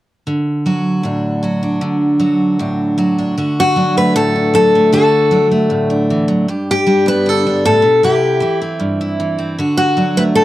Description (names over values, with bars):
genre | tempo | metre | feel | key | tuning
country | 154 BPM | 4/4 | straight | D mixolydian | A4 = 440 Hz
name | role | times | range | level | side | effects
picked steel-string acoustic guitar | accompaniment | 0.3-10.4 s | G2 to G4 | -15 LUFS | right 1 dB | none
picked steel-string acoustic guitar | melody | 3.6-10.4 s | F#4 to B4 | -12 LUFS | left 1 dB | none
room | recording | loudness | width
moderate booth ambience, RT60 0.2 s | dry, close 1970s-style studio recording | -12 LUFS | side -15 dB against mid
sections
0.3-3.4 A section; 3.4-10.4 B section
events
none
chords
0.3 D; 6.5 G; 8.0 C; 9.6 D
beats
| 0.26 0.65 1.04 1.43 | 1.82 2.21 2.60 2.98 | 3.37 3.76 4.15 4.54 | 4.92 5.31 5.70 6.09 | 6.48 6.87 7.25 7.64 | 8.03 8.42 8.81 9.20 | 9.59 9.97 10.36